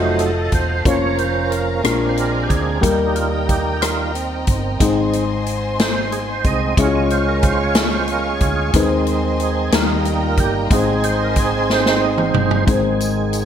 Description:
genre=slow gospel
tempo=61 BPM (dotted quarters)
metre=6/8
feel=straight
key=Ab major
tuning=A4 = 439 Hz
part: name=warm baby grand piano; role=accompaniment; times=0.0-13.4 s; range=Ab2 to Eb5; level=-21 LUFS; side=left 4 dB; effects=none
part: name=rich studio string section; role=sustained chords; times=0.0-12.7 s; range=Db4 to Db6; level=-27 LUFS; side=left 2 dB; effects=none
part: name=tonewheel organ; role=sustained chords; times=0.0-13.4 s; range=Eb3 to Eb5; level=-21 LUFS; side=right 5 dB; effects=overdrive, chorus vibrato, slow rotary speaker
part: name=hollow-body short-scale fingered electric bass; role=bass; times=0.0-13.4 s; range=Fb1 to Eb2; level=-23 LUFS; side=equal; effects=none
part: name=swinging big-band drum kit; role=drums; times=0.2-13.4 s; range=hi-hat, kick drum, rim click, snare drum, toms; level=-20 LUFS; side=equal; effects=gated reverb
part: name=tambourine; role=percussion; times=13.0-13.4 s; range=none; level=-31 LUFS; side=left 4 dB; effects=none
room=moderate lush hall reverb, RT60 1.8 s, small room ambience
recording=bright 1980s-style digital production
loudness=-15 LUFS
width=side -9 dB against mid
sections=0.0-12.7 A section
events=tonewheel organ solo 0.0-12.7; drum fill 11.7-12.7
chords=0.0 F7b9; 0.9 Bbm/F; 1.8 Bb7; 2.8 Eb; 4.8 Ab; 6.8 Db; 8.7 Ab/Eb; 9.7 Eb; 10.7 Ab

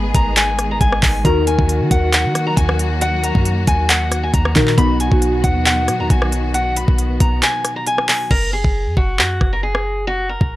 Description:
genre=hip hop, trap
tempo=136 BPM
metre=4/4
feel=half-time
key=F# major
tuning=A4 = 440 Hz
part: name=picked steel-string acoustic guitar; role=melody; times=0.0-10.6 s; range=F#4 to B5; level=-21 LUFS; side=equal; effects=low-pass filter
part: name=warbly lo-fi synth keys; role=accompaniment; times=0.0-8.3 s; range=B2 to D#5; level=-22 LUFS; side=equal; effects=chorus, low-pass filter
part: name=warm symphonic string section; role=sustained chords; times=0.0-8.3 s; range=D#3 to G#4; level=-25 LUFS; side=left 2 dB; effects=none
part: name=clean 808-style bass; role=bass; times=0.0-10.6 s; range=F#1 to D#3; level=-19 LUFS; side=equal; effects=none
part: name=trap drum kit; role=drums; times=0.1-10.5 s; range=crash cymbal, handclaps, hi-hat, kick drum, rim click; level=-17 LUFS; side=equal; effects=none
room=little or no reverb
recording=dry, gritty hardware recording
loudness=-14 LUFS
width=side -16 dB against mid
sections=0.0-8.3 A section; 8.3-10.6 B section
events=kick muted 7.4-8.3; hi-hats muted 8.3-10.6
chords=0.0 G#m; 1.2 D#m; 4.8 B; 8.3 F#

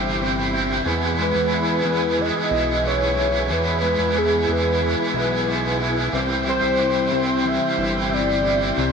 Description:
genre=dream pop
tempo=91 BPM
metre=4/4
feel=straight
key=unclear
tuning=A4 = 442 Hz
part: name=biting overdriven guitar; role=accompaniment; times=0.0-8.9 s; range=E2 to E4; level=-24 LUFS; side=right 3 dB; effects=harmonic tremolo, wide subtle chorus
part: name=percussive tonewheel organ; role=sustained chords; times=0.0-8.9 s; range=E4 to G#5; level=-27 LUFS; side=right 1 dB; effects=fast rotary speaker
part: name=mellow electric guitar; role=arpeggios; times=0.0-8.9 s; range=E2 to E4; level=-26 LUFS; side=left 5 dB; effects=ensemble chorus, digital delay
part: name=fat analog bass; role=bass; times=0.0-8.9 s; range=G1 to E2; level=-26 LUFS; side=right 1 dB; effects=none
part: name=warm velvety synth lead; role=melody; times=1.2-8.9 s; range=G#4 to E5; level=-23 LUFS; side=equal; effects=chorus, digital delay
room=moderate lush hall reverb, RT60 2.2 s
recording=none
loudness=-18 LUFS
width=side -6 dB against mid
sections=0.0-8.9 A section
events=none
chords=0.0 C; 0.9 E; 6.1 C

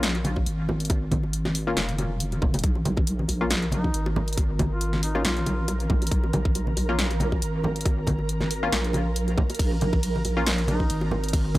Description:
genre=deep dubstep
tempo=138 BPM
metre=4/4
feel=swing 55% on 16ths, half-time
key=Bb minor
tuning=A4 = 440 Hz
part: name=filtered dub chord stab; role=stabs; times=0.0-11.6 s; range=Bb3 to F4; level=-32 LUFS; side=left 2 dB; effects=chorus, dub echo
part: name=deep soft wobble bass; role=bass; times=0.0-11.6 s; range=F1 to Bb1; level=-26 LUFS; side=equal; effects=chorus
part: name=deep house drum kit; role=drums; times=0.0-11.6 s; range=hi-hat, ride cymbal, snare drum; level=-29 LUFS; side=equal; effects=none
part: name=bongos and congas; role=percussion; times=0.2-11.6 s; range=none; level=-29 LUFS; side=equal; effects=none
part: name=electronic kick drum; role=drums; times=0.4-11.6 s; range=none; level=-24 LUFS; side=equal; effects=none
part: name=flickering grainy texture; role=texture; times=3.1-11.6 s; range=Bb4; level=-34 LUFS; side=right 4 dB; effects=built-in reverb
part: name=warm duduk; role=melody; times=3.7-5.9, 10.7-11.0 s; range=Eb4 to F4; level=-36 LUFS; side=equal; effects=dub echo
room=little or no reverb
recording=dry, gritty hardware recording, transformer saturation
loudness=-22 LUFS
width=side -17 dB against mid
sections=0.0-11.6 A section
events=none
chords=0.0 Bbm

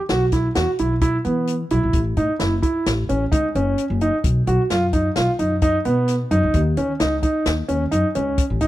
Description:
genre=progressive instrumental, band music in an uneven meter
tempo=130 BPM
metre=5/4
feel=straight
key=unclear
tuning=A4 = 441 Hz
part: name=warm concert grand piano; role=arpeggios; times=0.1-8.7 s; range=B3 to F#4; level=-20 LUFS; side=right 2 dB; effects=none
part: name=upright bass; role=bass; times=0.1-8.7 s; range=F#1 to E3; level=-22 LUFS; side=left 1 dB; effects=none
part: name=open jazz drum kit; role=drums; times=0.1-8.7 s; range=hi-hat, kick drum, snare drum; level=-23 LUFS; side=left 1 dB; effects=none
room=small room reverb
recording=dry, close 1970s-style studio recording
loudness=-17 LUFS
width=side -15 dB against mid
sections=0.0-8.7 A section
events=none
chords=0.0 E5; 1.9 A; 4.2 B; 6.5 N.C.

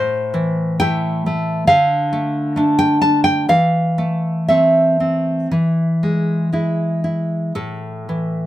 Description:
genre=romantic piece for solo classical guitar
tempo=55-70 BPM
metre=4/4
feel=rubato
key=A minor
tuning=A4 = 440 Hz
part: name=nylon-string guitar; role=solo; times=0.0-8.5 s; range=A2 to A5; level=-15 LUFS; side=equal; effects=none
room=light reverb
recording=minimal, uncompressed stereo recording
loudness=-15 LUFS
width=side -14 dB against mid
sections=0.0-8.5 A section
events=none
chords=0.0 Am; 1.7 Dm; 3.5 Am/E; 5.5 E; 7.6 A5

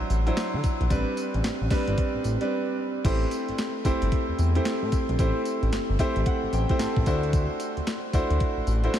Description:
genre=R&B, new jack swing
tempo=112 BPM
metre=4/4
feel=swing 63% on 16ths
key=A dorian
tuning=A4 = 440 Hz
part: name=clear concert grand piano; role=accompaniment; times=0.0-9.0 s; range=F#3 to A5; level=-27 LUFS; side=equal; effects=none
part: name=smooth gliding synth bass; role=bass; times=0.0-8.9 s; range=G1 to D3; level=-26 LUFS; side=equal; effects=none
part: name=crisp 8-bit digital drum machine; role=drums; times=0.1-9.0 s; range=crash cymbal, handclaps, hi-hat, kick drum, snare drum, tambourine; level=-28 LUFS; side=equal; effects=overdrive
room=moderate huge ambient reverb, RT60 8.4 s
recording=dreamy mix soaked in reverb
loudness=-23 LUFS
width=side -10 dB against mid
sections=0.0-3.0 A section; 3.0-9.0 A section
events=break 2.5-3.0; grand piano fill 5.7-7.3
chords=0.0 D9; 0.9 Am11; 3.0 Am7; 7.1 D9

